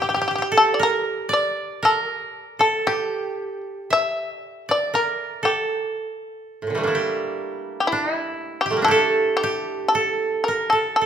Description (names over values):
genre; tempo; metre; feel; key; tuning
japanese traditional; 59 BPM; 2/4; uneven beats, rubato; A in sen; A4 = 440 Hz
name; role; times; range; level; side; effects
shamisen; melody; 0.0-11.1 s; E4 to E5; -20 LUFS; left 2 dB; none
koto; second line; 0.0-11.1 s; A2 to E5; -22 LUFS; right 3 dB; none
room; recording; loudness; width
moderate recital hall reverb, RT60 1.5 s; minimal, uncompressed stereo recording; -19 LUFS; side -8 dB against mid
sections
0.0-11.1 A section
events
none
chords
none